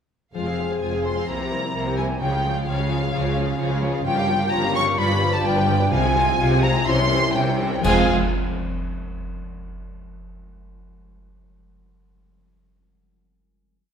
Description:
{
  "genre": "classical, dramatic, fast romantic movement for symphony orchestra",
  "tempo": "128 BPM",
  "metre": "4/4",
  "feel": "straight",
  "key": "F minor",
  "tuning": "A4 = 440 Hz",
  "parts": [
    { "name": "rich symphonic violin section", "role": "melody", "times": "0.3-8.1 s", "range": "F5 to Db6", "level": "-27 LUFS", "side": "left 2 dB", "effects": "none" },
    { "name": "dark symphonic violin section", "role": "second line", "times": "0.3-8.1 s", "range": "F4 to Ab5", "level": "-29 LUFS", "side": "left 2 dB", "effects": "none" },
    { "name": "silver concert flute", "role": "second line", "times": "0.3-8.1 s", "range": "F5 to Db6", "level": "-27 LUFS", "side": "right 1 dB", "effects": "none" },
    { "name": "warm symphonic viola section", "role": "accompaniment", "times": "0.3-8.1 s", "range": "E3 to Ab4", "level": "-29 LUFS", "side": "right 1 dB", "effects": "none" },
    { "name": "warm French horn section", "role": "sustained chords", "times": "0.3-8.1 s", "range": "C4 to Ab4", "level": "-27 LUFS", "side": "left 2 dB", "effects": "none" },
    { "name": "concert harp", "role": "arpeggios", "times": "0.3-8.1 s", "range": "G2 to C5", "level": "-29 LUFS", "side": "left 4 dB", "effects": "none" },
    { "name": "rich symphonic cello section", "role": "bass", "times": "0.3-8.1 s", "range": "F2 to Db3", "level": "-27 LUFS", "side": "right 2 dB", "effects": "none" },
    { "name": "rich symphonic double bass section", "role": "bass", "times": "0.3-8.1 s", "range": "F1 to Db2", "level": "-27 LUFS", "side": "right 3 dB", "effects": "none" },
    { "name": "cymbal swell, clash cymbals and concert bass drum", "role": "percussion", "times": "4.1-8.8 s", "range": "none", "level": "-30 LUFS", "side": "right 1 dB", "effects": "none" }
  ],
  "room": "moderate scoring stage reverb, RT60 1.5 s",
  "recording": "minimal, uncompressed stereo recording",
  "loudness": "-19 LUFS",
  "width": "side -7 dB against mid",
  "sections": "0.3-7.9 A section; 7.9-9.8 final chord",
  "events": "band accent 7.9-8.3",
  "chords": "0.3 Fm; 1.3 C7; 2.2 Db; 4.1 Gm7b5; 5.0 G7; 5.9 Fm/C; 6.9 C7b9; 7.9 Fm"
}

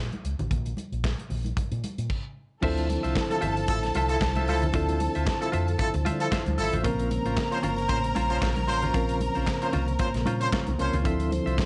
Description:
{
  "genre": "disco",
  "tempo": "114 BPM",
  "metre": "4/4",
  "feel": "swing 56% on 16ths",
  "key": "unclear",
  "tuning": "A4 = 441 Hz",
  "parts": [
    { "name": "fingered electric bass with an envelope filter", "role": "bass", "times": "0.0-11.6 s", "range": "G1 to D3", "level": "-31 LUFS", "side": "equal", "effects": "none" },
    { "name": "modern studio drum kit", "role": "drums", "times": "0.1-11.7 s", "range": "crash cymbal, handclaps, hi-hat, kick drum, snare drum", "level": "-33 LUFS", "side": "equal", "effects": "none" },
    { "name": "congas", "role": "percussion", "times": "0.1-11.7 s", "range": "none", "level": "-38 LUFS", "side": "equal", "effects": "none" },
    { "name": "clear symphonic string section", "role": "second line", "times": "2.6-11.7 s", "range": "A4 to C6", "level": "-35 LUFS", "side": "equal", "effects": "none" },
    { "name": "clean electric guitar", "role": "accompaniment", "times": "2.6-11.6 s", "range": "Db4 to E5", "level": "-37 LUFS", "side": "equal", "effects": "tremolo" },
    { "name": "reed electric piano", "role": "accompaniment", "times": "2.6-11.7 s", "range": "E3 to Bb4", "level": "-36 LUFS", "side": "equal", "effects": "fast tremolo" },
    { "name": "percussive tonewheel organ", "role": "sustained chords", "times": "2.6-11.7 s", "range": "Db3 to C5", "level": "-36 LUFS", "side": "equal", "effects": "slow rotary speaker" },
    { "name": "clear horn section", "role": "stabs", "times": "3.3-11.0 s", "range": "F3 to C5", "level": "-33 LUFS", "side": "equal", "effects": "none" }
  ],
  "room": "light reverb, studio ambience",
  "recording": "nothing above 11.0 kHz",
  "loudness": "-27 LUFS",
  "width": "mono",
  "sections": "0.0-2.6 A section; 2.6-11.7 B section",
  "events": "stop 2.1-2.6",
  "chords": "0.0 N.C.; 2.6 Dm9; 6.8 Bbmadd9; 11.1 Dm9"
}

